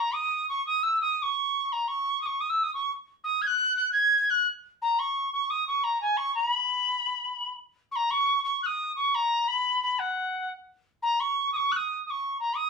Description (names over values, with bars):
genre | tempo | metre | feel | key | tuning
celtic folk | 116 BPM (dotted quarters) | 9/8 | straight | unclear | A4 = 440 Hz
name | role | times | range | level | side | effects
wooden whistle | solo | 0.0-12.7 s | F#5 to G#6 | -24 LUFS | equal | none
room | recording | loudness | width
wet studio reverb, RT60 0.5 s | band playing live in one room | -25 LUFS | side -4 dB against mid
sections
0.0-7.9 A section; 7.9-12.7 A section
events
none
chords
none